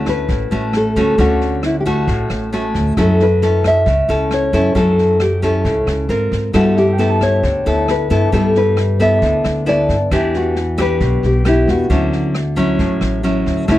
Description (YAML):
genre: bossa nova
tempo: 134 BPM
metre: 4/4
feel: straight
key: D major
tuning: A4 = 435 Hz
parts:
  - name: nylon-string guitar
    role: melody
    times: 0.0-13.8 s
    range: E4 to E5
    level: -18 LUFS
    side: left 1 dB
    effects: none
  - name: nylon-string guitar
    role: accompaniment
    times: 0.0-13.8 s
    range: A2 to A#4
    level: -17 LUFS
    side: left 1 dB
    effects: none
  - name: upright bass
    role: bass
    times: 0.0-13.8 s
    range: A1 to G#2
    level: -19 LUFS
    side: equal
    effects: none
  - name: open jazz drum kit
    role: drums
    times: 0.1-13.8 s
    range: kick drum, rim click, snare drum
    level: -25 LUFS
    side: equal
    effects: none
  - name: warm grand piano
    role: accompaniment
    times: 6.8-10.1 s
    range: E5 to A5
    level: -30 LUFS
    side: right 8 dB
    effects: none
room: little or no reverb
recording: dry, close 1970s-style studio recording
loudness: -13 LUFS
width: side -14 dB against mid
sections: 0.0-13.7 A section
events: none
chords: 0.0 Dmaj7; 3.0 F#m7; 6.1 G#69; 6.5 G69; 10.1 Em7; 11.9 Dmaj9